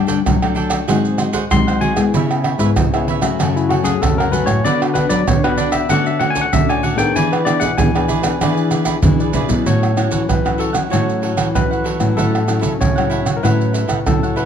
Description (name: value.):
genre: samba and choro.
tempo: 96 BPM.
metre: 4/4.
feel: straight.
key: A major.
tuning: A4 = 439 Hz.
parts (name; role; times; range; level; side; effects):
cavaquinho; accompaniment; 0.0-14.5 s; D4 to G#5; -25 LUFS; right 7 dB; none.
nylon-string guitar; accompaniment; 0.0-14.5 s; F#2 to G#4; -21 LUFS; left 6 dB; none.
nylon-string guitar; bass; 0.0-14.4 s; G#2 to G#3; -20 LUFS; left 1 dB; none.
maracas, surdo, pandeiro and tamborim; percussion; 0.1-14.5 s; none; -18 LUFS; right 4 dB; none.
barky tine electric piano; second line; 1.5-14.5 s; E4 to B#5; -21 LUFS; left 3 dB; none.
room: moderate large studio reverb, RT60 0.9 s.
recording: dark, warm production.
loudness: -14 LUFS.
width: side -8 dB against mid.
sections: 0.0-9.7 A section; 9.7-14.5 B section.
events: tine electric piano solo 0.0-9.7; drum fill 8.7-9.7.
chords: 0.0 Gsus2; 0.9 G#7; 2.1 C#m7; 3.4 F#madd9; 4.7 Bm/D; 5.9 Dmaj7; 7.2 E7; 9.7 A6.